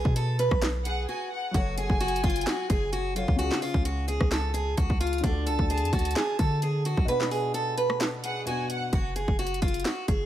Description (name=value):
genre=hip hop, trap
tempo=130 BPM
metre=4/4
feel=half-time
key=F# harmonic minor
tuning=A4 = 440 Hz
part: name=picked acoustic archtop guitar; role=melody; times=0.0-10.3 s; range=D4 to B4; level=-30 LUFS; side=right 1 dB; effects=tape echo
part: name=warm 808-style bass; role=bass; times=0.0-10.3 s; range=F#1 to D3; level=-29 LUFS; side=equal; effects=none
part: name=trap drum kit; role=drums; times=0.1-10.2 s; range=handclaps, hi-hat, kick drum, rim click, snare drum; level=-27 LUFS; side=equal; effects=overdrive
part: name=warm studio violin section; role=second line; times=0.9-8.9 s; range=F#5 to A5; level=-35 LUFS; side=equal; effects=tape echo
part: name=dark grand piano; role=accompaniment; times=1.5-9.0 s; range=B2 to C#5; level=-35 LUFS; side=left 2 dB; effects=none
room=small room ambience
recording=vinyl crackle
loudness=-24 LUFS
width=side -12 dB against mid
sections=0.0-8.9 A section; 8.9-10.3 B section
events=break 1.1-1.5; kick muted 7.1-8.9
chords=0.0 G#m7/B; 1.5 F#m; 3.4 C#; 5.2 D; 7.1 Bm; 8.9 F#5